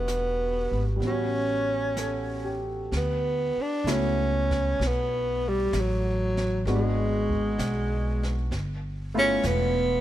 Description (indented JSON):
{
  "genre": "jazz ballad",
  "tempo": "64 BPM",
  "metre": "4/4",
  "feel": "swing 68% on 8ths",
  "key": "D major",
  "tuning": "A4 = 439 Hz",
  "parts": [
    { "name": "breathy tenor saxophone", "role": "melody", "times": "0.0-10.0 s", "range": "F#3 to D4", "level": "-26 LUFS", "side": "equal", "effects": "none" },
    { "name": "warm concert grand piano", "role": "accompaniment", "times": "0.0-10.0 s", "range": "G3 to A4", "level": "-32 LUFS", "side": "right 1 dB", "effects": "none" },
    { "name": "upright bass", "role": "bass", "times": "0.0-10.0 s", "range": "E1 to D2", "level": "-29 LUFS", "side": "equal", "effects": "none" },
    { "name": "jazz brush drum kit", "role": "drums", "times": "0.1-10.0 s", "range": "brushed snare drum, hi-hat, kick drum, snare drum", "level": "-38 LUFS", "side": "right 1 dB", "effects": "none" }
  ],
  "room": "light reverb",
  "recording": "dark, warm production",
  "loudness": "-24 LUFS",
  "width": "side -13 dB against mid",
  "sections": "0.0-2.9 A section; 2.9-10.0 B section",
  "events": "none",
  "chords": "0.0 Em7; 1.0 A13; 2.9 D69; 6.7 G#m7b5; 8.5 G13",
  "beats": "0.07 1.00 1.96 | 2.91 3.86 4.80 5.73 | 6.66 7.59 8.51 9.44"
}